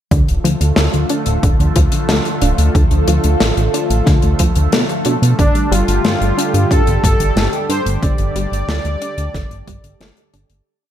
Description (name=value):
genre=synthwave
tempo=91 BPM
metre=4/4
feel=straight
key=D minor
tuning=A4 = 441 Hz
part: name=lush unison pad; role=sustained chords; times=0.4-10.6 s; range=D3 to A4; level=-21 LUFS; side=right 1 dB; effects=chorus, phaser, vintage 12-bit sampler grit, sidechain pumping
part: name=wide unison pluck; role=arpeggios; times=0.1-10.4 s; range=D3 to D4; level=-22 LUFS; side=left 1 dB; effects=digital delay
part: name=chorused synth bass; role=bass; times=0.1-10.6 s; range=D1 to B2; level=-16 LUFS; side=equal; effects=none
part: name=electronic kick drum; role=drums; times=0.1-9.8 s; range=none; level=-16 LUFS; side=equal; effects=none
part: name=modern studio drum kit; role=drums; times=0.1-10.6 s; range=hi-hat, snare drum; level=-20 LUFS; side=left 2 dB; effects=gated reverb
part: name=soft supersaw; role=melody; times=5.4-10.3 s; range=D4 to D5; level=-20 LUFS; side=equal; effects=none
room=small room ambience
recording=none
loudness=-12 LUFS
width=side -10 dB against mid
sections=0.1-10.7 verse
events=fade-out 7.1-10.7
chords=0.1 Dm; 5.4 Gsus2